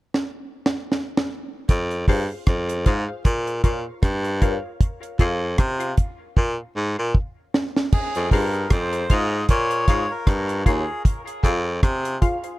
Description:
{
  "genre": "dub reggae",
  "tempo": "77 BPM",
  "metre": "4/4",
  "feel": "swing 56% on 16ths",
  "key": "F minor",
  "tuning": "A4 = 441 Hz",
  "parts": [
    { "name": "deep reggae drum kit", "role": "drums", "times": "0.1-12.6 s", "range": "crash cymbal, hi-hat, kick drum, rim click, snare drum", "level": "-19 LUFS", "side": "equal", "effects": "none" },
    { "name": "breathy baritone saxophone", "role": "bass", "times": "1.7-12.2 s", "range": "Eb2 to C3", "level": "-23 LUFS", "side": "equal", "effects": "none" },
    { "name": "filtered dub chord stab", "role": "stabs", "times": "2.1-12.5 s", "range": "F4 to F5", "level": "-30 LUFS", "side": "left 3 dB", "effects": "phaser, dub echo" },
    { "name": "melodica", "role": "melody", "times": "7.9-11.0 s", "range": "Ab4 to Eb5", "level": "-27 LUFS", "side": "left 2 dB", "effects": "dub echo" }
  ],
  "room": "light reverb",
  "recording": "echo-heavy mix",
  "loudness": "-20 LUFS",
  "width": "side -18 dB against mid",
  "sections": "0.0-1.7 A section; 1.7-7.9 B section; 7.9-12.6 C section",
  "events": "drum fill 0.1-1.7, 6.4-7.9",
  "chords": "0.0 N.C.; 1.7 Fm; 3.3 Bbm; 4.8 F5; 6.4 Absus2; 7.9 Fm; 9.5 Bbm; 11.0 Fm"
}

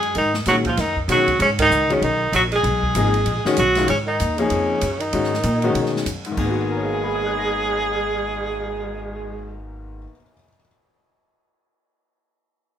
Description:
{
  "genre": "modal jazz",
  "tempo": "193 BPM",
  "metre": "4/4",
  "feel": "swing 60% on 8ths",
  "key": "G# dorian",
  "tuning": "A4 = 438 Hz",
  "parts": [
    { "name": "warm tenor saxophone", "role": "melody", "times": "0.0-9.6 s", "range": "C#4 to G#4", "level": "-21 LUFS", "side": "equal", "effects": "none" },
    { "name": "breathy tenor saxophone", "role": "second line", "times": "0.0-9.6 s", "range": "C#3 to G#3", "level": "-27 LUFS", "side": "right 4 dB", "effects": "none" },
    { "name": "upright bass", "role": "bass", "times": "0.0-10.1 s", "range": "G#1 to B2", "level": "-26 LUFS", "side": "equal", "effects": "none" },
    { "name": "open jazz drum kit", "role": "drums", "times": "0.0-8.8 s", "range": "crash cymbal, cymbal swell, hi-hat, kick drum, ride cymbal, snare drum", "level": "-30 LUFS", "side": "right 1 dB", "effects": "none" },
    { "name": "clear upright piano", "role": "accompaniment", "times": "0.5-10.7 s", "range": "G#2 to A#6", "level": "-24 LUFS", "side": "left 4 dB", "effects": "none" }
  ],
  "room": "moderate studio reverb, RT60 0.8 s",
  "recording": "minimal, uncompressed stereo recording",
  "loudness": "-18 LUFS",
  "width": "side -9 dB against mid",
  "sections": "0.0-3.9 A section; 3.9-6.4 B section; 6.4-8.8 C section",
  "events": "band accent 1.6",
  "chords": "0.0 G#m9"
}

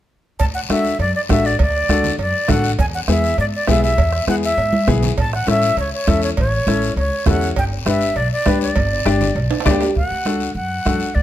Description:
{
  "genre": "latin, cumbia",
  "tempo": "201 BPM",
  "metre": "4/4",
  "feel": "straight",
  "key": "D major",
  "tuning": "A4 = 440 Hz",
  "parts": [
    { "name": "breathy concert flute", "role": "melody", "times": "0.4-11.2 s", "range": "C#5 to A5", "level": "-20 LUFS", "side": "equal", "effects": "plate reverb" },
    { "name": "upright bass", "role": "bass", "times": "0.4-11.2 s", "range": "G1 to G#2", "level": "-21 LUFS", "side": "equal", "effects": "none" },
    { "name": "bombo", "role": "percussion", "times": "0.4-11.2 s", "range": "none", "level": "-21 LUFS", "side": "right 2 dB", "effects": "none" },
    { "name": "cowbell and timbales", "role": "percussion", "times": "0.4-9.9 s", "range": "none", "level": "-28 LUFS", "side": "right 7 dB", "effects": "none" },
    { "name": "guiro", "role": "percussion", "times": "0.4-11.2 s", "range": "none", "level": "-30 LUFS", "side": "left 8 dB", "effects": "none" },
    { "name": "clear upright piano", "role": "accompaniment", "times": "0.7-11.1 s", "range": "B3 to D5", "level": "-22 LUFS", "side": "left 6 dB", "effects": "none" },
    { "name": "congas", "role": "percussion", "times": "0.7-11.0 s", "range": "none", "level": "-24 LUFS", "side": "right 2 dB", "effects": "none" }
  ],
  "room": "light reverb",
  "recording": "close, detailed microphones",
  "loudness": "-15 LUFS",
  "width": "side -12 dB against mid",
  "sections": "0.4-10.0 A section; 10.0-11.2 B section",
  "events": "drum fill 4.7-5.2, 9.5-10.0",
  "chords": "0.4 D; 2.8 E; 5.2 A; 7.6 G; 10.0 D"
}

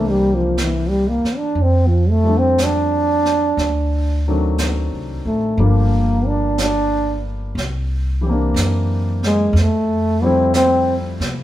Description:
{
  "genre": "jazz ballad",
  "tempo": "60 BPM",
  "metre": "4/4",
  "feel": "swing 68% on 8ths",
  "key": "F major",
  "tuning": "A4 = 440 Hz",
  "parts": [
    { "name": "mellow trombone", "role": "melody", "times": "0.0-11.0 s", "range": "E3 to D4", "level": "-17 LUFS", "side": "equal", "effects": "none" },
    { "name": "warm grand piano", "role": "accompaniment", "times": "0.0-11.4 s", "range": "Eb3 to A4", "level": "-24 LUFS", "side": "left 2 dB", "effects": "none" },
    { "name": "upright bass", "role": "bass", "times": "0.0-11.4 s", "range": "G1 to C3", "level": "-19 LUFS", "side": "equal", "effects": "none" },
    { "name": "jazz brush drum kit", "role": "drums", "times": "0.6-11.4 s", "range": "brushed snare drum, hi-hat, snare drum", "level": "-28 LUFS", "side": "right 2 dB", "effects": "none" }
  ],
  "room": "moderate studio reverb, RT60 0.9 s",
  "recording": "band playing live in one room",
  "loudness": "-15 LUFS",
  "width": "side -13 dB against mid",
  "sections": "0.0-11.4 A section",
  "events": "trombone solo 0.0-11.4",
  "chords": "0.0 C9; 1.6 F69; 3.6 D7b9; 5.6 Gm9; 7.6 C9; 9.6 Fmaj9"
}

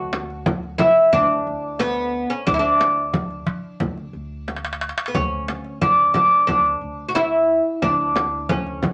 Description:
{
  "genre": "Arabic maqam ensemble",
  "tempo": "90 BPM",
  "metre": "4/4",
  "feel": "straight",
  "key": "D maqam ajam",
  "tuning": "A4 = 438 Hz",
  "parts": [
    { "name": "oud", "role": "melody", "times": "0.0-8.9 s", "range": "B3 to F#4", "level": "-20 LUFS", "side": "equal", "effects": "none" },
    { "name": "upright bass", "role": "bass", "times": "0.0-8.8 s", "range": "D2", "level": "-37 LUFS", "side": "equal", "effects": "none" },
    { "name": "darbuka", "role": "percussion", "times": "0.1-8.9 s", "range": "none", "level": "-29 LUFS", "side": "equal", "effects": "none" },
    { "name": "frame drum", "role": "percussion", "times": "0.1-8.9 s", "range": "none", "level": "-29 LUFS", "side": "equal", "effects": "none" }
  ],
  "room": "moderate club reverb, RT60 0.6 s",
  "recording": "none",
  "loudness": "-20 LUFS",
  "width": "mono",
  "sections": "0.0-5.1 A section; 5.1-8.9 A section",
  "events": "drum fill 4.5-5.1",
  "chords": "none"
}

